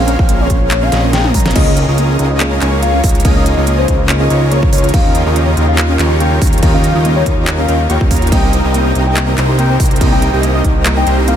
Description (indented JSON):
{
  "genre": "future bass",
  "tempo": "142 BPM",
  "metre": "4/4",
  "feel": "swing 53% on 16ths, half-time",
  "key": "Db lydian",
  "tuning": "A4 = 440 Hz",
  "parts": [
    { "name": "soft octave-layered synth lead", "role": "melody", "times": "0.0-11.4 s", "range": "C5 to Bb5", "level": "-20 LUFS", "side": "left 3 dB", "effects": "chorus, phaser, cassette tape, sidechain pumping, tape echo" },
    { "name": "dense compressed supersaw", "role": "riff", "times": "0.0-11.4 s", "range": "C4 to G5", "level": "-18 LUFS", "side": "right 1 dB", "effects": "sidechain pumping" },
    { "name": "fat analog bass", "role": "bass", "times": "0.0-11.4 s", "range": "Bb1 to Eb2", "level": "-14 LUFS", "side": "equal", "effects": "sidechain pumping" },
    { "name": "thumb-piano-like synth pluck", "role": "arpeggios", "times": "0.1-11.3 s", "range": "Bb3 to Ab4", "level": "-23 LUFS", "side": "right 2 dB", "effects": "chorus, sidechain pumping, ping-pong delay" },
    { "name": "dubstep drum kit", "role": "drums", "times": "0.1-11.4 s", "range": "crash cymbal, handclaps, hi-hat, snare drum, toms", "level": "-21 LUFS", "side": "equal", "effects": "none" },
    { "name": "electronic kick drum", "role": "drums", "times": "0.2-10.7 s", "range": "none", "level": "-13 LUFS", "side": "equal", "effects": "none" },
    { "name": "clear studio string section", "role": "sustained chords", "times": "1.6-11.4 s", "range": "C3 to F4", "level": "-24 LUFS", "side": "equal", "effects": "sidechain pumping" }
  ],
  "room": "light reverb",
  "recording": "none",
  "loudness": "-10 LUFS",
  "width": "side -9 dB against mid",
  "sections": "0.0-1.6 A section; 1.6-11.4 A section",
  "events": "drop 0.0-1.6, 1.6-11.4; drum fill 0.9-1.6",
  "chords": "0.0 Bbm9; 1.6 Db69; 4.9 Eb9; 8.3 Cm7"
}